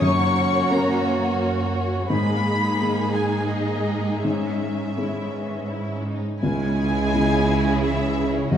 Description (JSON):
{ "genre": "cinematic, emotional film score for orchestra", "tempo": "85 BPM", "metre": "3/4", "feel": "rubato", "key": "unclear", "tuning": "A4 = 440 Hz", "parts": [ { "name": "rich studio violin section", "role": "melody", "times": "0.0-8.6 s", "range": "C#5 to C#6", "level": "-28 LUFS", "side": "left 3 dB", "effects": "none" }, { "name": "warm studio violin section", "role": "second line", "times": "0.0-8.6 s", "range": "C#4 to C#5", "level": "-27 LUFS", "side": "left 1 dB", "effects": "none" }, { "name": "felt-muted upright piano", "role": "accompaniment", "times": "0.0-8.6 s", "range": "C#2 to A#4", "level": "-26 LUFS", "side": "left 2 dB", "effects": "none" }, { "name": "rich studio viola section", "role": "accompaniment", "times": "0.0-8.6 s", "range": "G#3 to C#4", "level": "-28 LUFS", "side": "right 2 dB", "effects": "none" }, { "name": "concert harp", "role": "arpeggios", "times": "0.0-8.6 s", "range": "F#2 to F#4", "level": "-32 LUFS", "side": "left 5 dB", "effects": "none" }, { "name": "warm studio cello section", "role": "bass", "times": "0.0-8.6 s", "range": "F#2 to C#3", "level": "-28 LUFS", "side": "right 4 dB", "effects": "none" }, { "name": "dark French horn section", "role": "sustained chords", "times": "6.4-8.6 s", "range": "C#3 to G#3", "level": "-27 LUFS", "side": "left 1 dB", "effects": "none" }, { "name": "rich studio double bass section", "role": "bass", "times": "6.4-8.6 s", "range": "F#1 to C#2", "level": "-27 LUFS", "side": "right 4 dB", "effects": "none" } ], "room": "wet recital hall reverb, RT60 1.7 s", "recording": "none", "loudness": "-20 LUFS", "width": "side -9 dB against mid", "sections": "0.0-6.4 A section; 6.4-8.6 A section", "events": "none", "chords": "0.0 F#; 2.1 G#madd9; 4.2 C#madd9/G#; 6.4 C#m" }